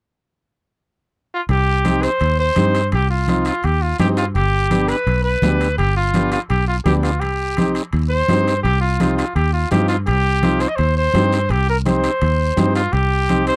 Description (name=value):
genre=latin, cumbia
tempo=168 BPM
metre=4/4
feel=straight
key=C harmonic minor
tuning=A4 = 443 Hz
part: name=clear trumpet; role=melody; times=1.3-13.6 s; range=F4 to Eb5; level=-22 LUFS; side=equal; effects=none
part: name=fingered electric bass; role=bass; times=1.5-13.5 s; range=G1 to G2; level=-21 LUFS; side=equal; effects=none
part: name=congas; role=percussion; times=1.5-13.5 s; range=none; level=-25 LUFS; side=equal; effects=none
part: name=guiro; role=percussion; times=1.5-13.6 s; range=none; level=-39 LUFS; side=equal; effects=none
part: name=timbales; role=percussion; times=1.5-13.6 s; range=none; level=-33 LUFS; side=equal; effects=none
part: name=combo organ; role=accompaniment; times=1.8-13.5 s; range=B3 to G4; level=-23 LUFS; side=equal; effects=none
room=little or no reverb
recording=dry, close 1970s-style studio recording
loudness=-18 LUFS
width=mono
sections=0.1-1.5 A section; 1.5-12.9 B section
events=none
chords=0.1 N.C.; 1.5 Cm; 4.4 G7; 7.2 Cm